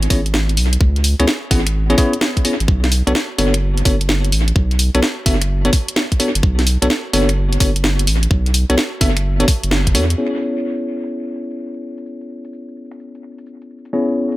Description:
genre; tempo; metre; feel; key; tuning
UK garage, two-step garage; 128 BPM; 4/4; swing 66% on 16ths; C# phrygian; A4 = 445 Hz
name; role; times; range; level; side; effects
saturated sub bass; bass; 0.0-10.2 s; F#1 to E2; -17 LUFS; equal; none
garage drum kit; drums; 0.0-14.4 s; finger snaps, hi-hat, shaker, snare drum; -20 LUFS; equal; low-pass filter on snare, small room ambience, low-pass filter on hats, low-pass filter on perc, dub echo
bell-like tine electric piano; stabs; 0.1-14.4 s; B3 to F#5; -20 LUFS; left 1 dB; low-pass filter, analog delay
electronic kick drum; drums; 0.1-9.9 s; none; -15 LUFS; equal; small room ambience
room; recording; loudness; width
light reverb; echo-heavy mix; -14 LUFS; side -17 dB against mid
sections
0.0-10.2 A section; 10.2-14.4 B section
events
band accent 9.7; filter sweep on tine electric piano 10.2-14.4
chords
0.0 C#m7; 2.7 Bm7; 10.2 C#m7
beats
0.34 | 0.81 1.27 1.74 2.21 | 2.68 3.15 3.62 4.09 | 4.56 5.03 5.49 5.96 | 6.43 6.90 7.37 7.84 | 8.31 8.78 9.24 9.71 | 10.18 10.65 11.12 11.59 | 12.06 12.53 12.99 13.46 | 13.93

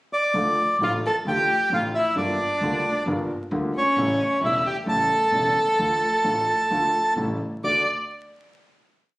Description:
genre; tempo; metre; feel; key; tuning
tango; 132 BPM; 4/4; rubato; D harmonic minor; A4 = 440 Hz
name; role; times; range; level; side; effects
bandoneon; melody; 0.1-7.8 s; C#5 to D6; -22 LUFS; right 1 dB; none
warm concert grand piano; accompaniment; 0.3-7.8 s; E1 to F#4; -28 LUFS; equal; none
upright bass; bass; 0.3-7.8 s; E1 to D2; -34 LUFS; equal; none
warm violin; second line; 0.8-7.9 s; C#4 to D5; -26 LUFS; left 1 dB; none
room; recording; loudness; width
light reverb; recorded on a phone in the room, studio reverb, vinyl crackle, compression; -20 LUFS; side -19 dB against mid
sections
0.0-0.3 pickup bar; 0.3-7.6 A section; 7.6-9.2 final chord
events
none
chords
0.3 Dm; 2.2 Gm7; 4.0 A7; 5.8 Dm; 7.2 A7; 7.6 D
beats
| 0.35 0.80 1.26 1.71 | 2.16 2.61 3.07 3.52 | 3.96 4.42 4.87 5.33 | 5.78 6.24 6.70 7.17 | 7.63

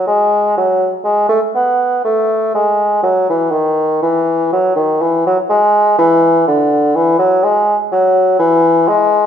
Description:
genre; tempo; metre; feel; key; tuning
classical, baroque-style fantasia for unaccompanied bassoon; 61 BPM; 3/4; rubato; E major; A4 = 441 Hz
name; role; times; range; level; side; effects
mellow bassoon; solo; 0.0-9.3 s; D3 to B3; -11 LUFS; equal; none
room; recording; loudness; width
moderate recital hall reverb, RT60 1.4 s; minimal, uncompressed stereo recording; -11 LUFS; side -8 dB against mid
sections
0.0-9.3 A section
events
none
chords
none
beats
| 0.08 1.06 2.05 | 3.04 4.04 5.03 | 6.01 6.96 7.93 | 8.90

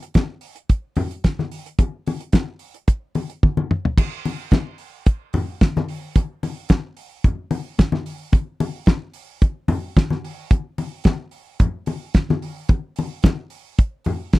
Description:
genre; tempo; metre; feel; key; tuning
disco; 110 BPM; 4/4; straight; none; none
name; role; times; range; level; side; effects
damped 70s drum kit; drums; 0.0-14.4 s; crash cymbal, hi-hat, kick drum, snare drum, toms; -15 LUFS; equal; none
congas; percussion; 0.2-14.4 s; none; -23 LUFS; left 3 dB; none
room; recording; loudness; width
little or no reverb; dry, close 1970s-style studio recording; -19 LUFS; side -19 dB against mid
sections
0.0-4.0 A section; 4.0-14.4 B section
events
drum fill 3.4-4.0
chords
none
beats
0.15 0.70 1.25 | 1.79 2.34 2.88 3.43 | 3.97 4.52 5.06 5.61 | 6.15 6.70 7.24 7.79 | 8.33 8.88 9.42 9.97 | 10.51 11.06 11.60 12.15 | 12.70 13.24 13.79 14.33

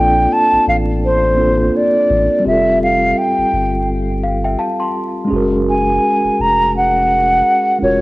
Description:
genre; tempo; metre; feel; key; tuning
lo-fi hip hop; 84 BPM; 4/4; swing 58% on 16ths; unclear; A4 = 440 Hz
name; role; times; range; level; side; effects
breathy mellow concert flute; melody; 0.0-8.0 s; C5 to Bb5; -14 LUFS; equal; low-pass filter, cassette tape
mellow tine electric piano; accompaniment; 0.0-8.0 s; G3 to D5; -18 LUFS; equal; medium stereo tremolo, cassette tape, low-pass filter
soft dub sub bass; bass; 0.0-8.0 s; F1 to Bb1; -21 LUFS; equal; transformer saturation
small celesta; second line; 4.2-5.3 s; E5 to C6; -21 LUFS; left 1 dB; low-pass filter, cassette tape, tape echo
room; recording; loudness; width
light reverb, studio reverb; home recording on cassette, vinyl crackle; -12 LUFS; side -20 dB against mid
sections
0.0-8.0 A section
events
none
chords
0.0 Bbmaj9; 2.4 Fadd9; 5.3 Gbmaj9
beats
0.30 1.02 1.73 | 2.44 3.16 3.87 4.59 | 5.30 6.02 6.73 7.44

